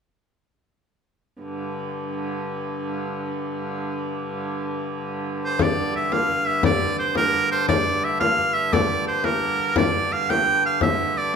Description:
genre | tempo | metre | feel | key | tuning
medieval dance | 115 BPM (dotted quarters) | 6/8 | straight | G dorian | A4 = 437 Hz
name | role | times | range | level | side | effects
clear hurdy-gurdy | drone | 1.4-11.4 s | G2 to D3 | -28 LUFS | right 1 dB | none
edgy shawm | melody | 5.4-11.3 s | Bb4 to G5 | -21 LUFS | right 2 dB | none
frame drum | percussion | 5.6-11.0 s | none | -24 LUFS | left 4 dB | none
room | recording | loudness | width
wet large studio reverb, RT60 1.1 s | band playing live in one room | -20 LUFS | side -6 dB against mid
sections
1.4-5.6 A section; 5.6-11.4 B section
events
none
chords
none

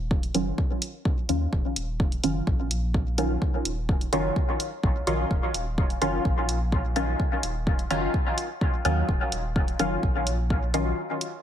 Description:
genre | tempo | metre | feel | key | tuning
dub techno | 127 BPM | 4/4 | straight | Eb minor | A4 = 442 Hz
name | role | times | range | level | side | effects
pure sine sub bass | bass | 0.0-10.9 s | Eb1 to Eb2 | -29 LUFS | equal | sidechain pumping
electronic kick drum | drums | 0.1-10.6 s | none | -25 LUFS | equal | none
electronic hi-hat | drums | 0.2-11.3 s | none | -32 LUFS | right 1 dB | none
filtered dub chord stab | stabs | 0.3-11.0 s | Eb3 to F4 | -28 LUFS | equal | chorus, phaser, sidechain pumping, dub echo
room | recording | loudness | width
light reverb | heavily compressed radio sound | -23 LUFS | side -10 dB against mid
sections
0.0-11.4 A section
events
break 11.0-11.4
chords
0.0 Ebm9

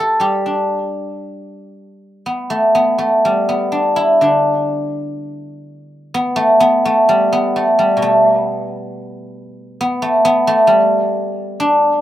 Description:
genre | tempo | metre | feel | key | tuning
chinese traditional, Chinese solo plucked strings | 57-68 BPM | 4/4 | rubato | G gong mode | A4 = 440 Hz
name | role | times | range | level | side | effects
guzheng | solo | 0.0-12.0 s | B2 to D5 | -13 LUFS | equal | none
room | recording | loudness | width
little or no reverb | recorded outdoors, with no room sound | -13 LUFS | side -13 dB against mid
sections
0.0-2.3 A section; 2.3-12.0 B section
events
none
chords
none

